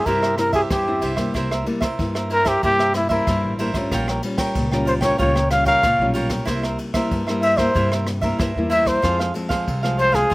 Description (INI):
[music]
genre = samba and choro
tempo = 94 BPM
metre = 4/4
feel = straight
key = unclear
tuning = A4 = 440 Hz
[part]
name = breathy trumpet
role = melody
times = 0.0-10.3 s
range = E4 to F5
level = -18 LUFS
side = equal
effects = none
[part]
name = cavaquinho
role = accompaniment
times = 0.0-10.3 s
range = E4 to G5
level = -25 LUFS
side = right 2 dB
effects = none
[part]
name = nylon-string guitar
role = accompaniment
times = 0.0-10.3 s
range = F2 to F4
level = -25 LUFS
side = left 1 dB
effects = none
[part]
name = upright bass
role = bass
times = 0.1-10.3 s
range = A1 to G2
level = -26 LUFS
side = equal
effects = none
[part]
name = jazz brush drum kit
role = drums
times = 0.1-10.3 s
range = kick drum, ride cymbal, rim click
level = -28 LUFS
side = equal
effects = none
[sound]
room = little or no reverb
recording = recorded outdoors, with no room sound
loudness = -18 LUFS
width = side -21 dB against mid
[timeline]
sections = 0.0-10.3 A section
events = none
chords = 0.0 C; 1.3 C7; 3.9 Gm7b5/Bb; 6.5 C7; 9.0 Fm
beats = 0.07 0.71 | 1.35 1.99 2.63 3.27 | 3.91 4.55 5.19 5.83 | 6.47 7.12 7.75 8.40 | 9.04 9.68 10.31